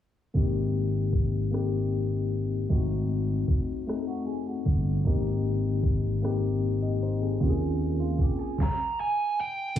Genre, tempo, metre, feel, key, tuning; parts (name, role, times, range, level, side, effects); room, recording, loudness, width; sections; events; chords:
slow six-eight R&B; 51 BPM (dotted quarters); 6/8; straight; Ab major; A4 = 440 Hz
tine electric piano; accompaniment; 0.3-9.8 s; A3 to Eb5; -30 LUFS; left 4 dB; medium stereo tremolo, plate reverb, slapback echo
smooth R&B drum kit; drums; 0.3-9.8 s; crash cymbal, hi-hat, kick drum, rim click, snare drum; -26 LUFS; equal
sustaining fretless electric bass; bass; 0.4-9.8 s; G1 to Eb2; -27 LUFS; equal
mellow electric guitar; second line; 4.1-9.5 s; F4 to Ab4; -42 LUFS; right 4 dB; plate reverb, slapback echo
dark smooth lead guitar; melody; 8.6-9.8 s; G5 to Bb5; -27 LUFS; right 3 dB; overdrive, plate reverb, slapback echo, tape echo
light reverb; live gig heard through the venue's PA, club reverb, low-pass filter, small room ambience; -25 LUFS; side -10 dB against mid
0.3-9.8 A section
filter sweep 0.3-9.8
0.3 Abmaj9; 2.7 Ab7b9; 5.1 Abmaj9; 7.4 Eb9sus4